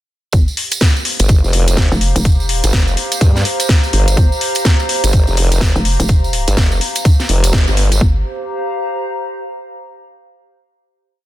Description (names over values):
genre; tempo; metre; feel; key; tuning
bass house; 125 BPM; 4/4; swing 61% on 16ths; G minor; A4 = 441 Hz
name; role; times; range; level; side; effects
hollow knocking FM bass; bass; 0.3-8.2 s; F1 to G1; -17 LUFS; equal; tube saturation, sidechain pumping
electronic kick drum; drums; 0.3-8.1 s; none; -12 LUFS; equal; small room reverb
garage drum kit; drums; 0.3-8.0 s; hi-hat, snare drum; -19 LUFS; left 1 dB; small room reverb
tambourine; percussion; 0.3-8.0 s; none; -24 LUFS; right 4 dB; none
warbly tape-like pad; texture; 1.1-9.9 s; G4 to Bb5; -23 LUFS; equal; chorus, built-in reverb, sidechain pumping
formant-sweep wobble bass; bass; 1.2-8.0 s; F1 to G2; -14 LUFS; equal; chorus, tube saturation, sidechain pumping
room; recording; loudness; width
digital ambience; dense, heavily limited modern master; -12 LUFS; side -14 dB against mid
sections
0.3-8.0 drop; 8.0-9.9 final chord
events
drop 0.3-8.0; band accent 7.5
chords
0.3 Gm